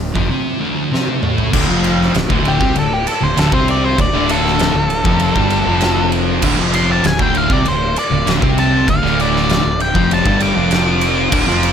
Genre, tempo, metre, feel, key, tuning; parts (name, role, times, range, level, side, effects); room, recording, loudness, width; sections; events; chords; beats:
stoner and doom metal; 98 BPM; 4/4; straight; D minor; A4 = 441 Hz
thick fuzz guitar; riff; 0.0-11.7 s; D2 to C4; -20 LUFS; left 8 dB; distortion
thick fuzz guitar; riff; 0.0-11.7 s; D2 to C4; -21 LUFS; right 9 dB; distortion
fuzz fingered electric bass; bass; 0.0-11.7 s; D1 to C2; -21 LUFS; equal; overdrive
oversized low-tuned drum kit; drums; 0.0-11.7 s; crash cymbal, hi-hat, kick drum, ride cymbal, snare drum, toms; -18 LUFS; right 1 dB
distorted electric guitar; riff; 1.5-11.7 s; D2 to C4; -21 LUFS; equal; overdrive
octave-fuzz lead guitar; melody; 2.5-11.7 s; G4 to D6; -19 LUFS; left 1 dB; distortion, ping-pong delay
small room ambience; -12 LUFS; side -8 dB against mid
0.0-1.5 A section; 1.5-11.7 B section
drum fill 0.9-1.5; lead electric guitar solo 1.5-11.7
0.0 Dm
0.30 0.91 | 1.53 2.14 2.75 3.37 | 3.98 4.59 5.20 5.81 | 6.42 7.04 7.65 8.26 | 8.87 9.48 10.10 10.71 | 11.32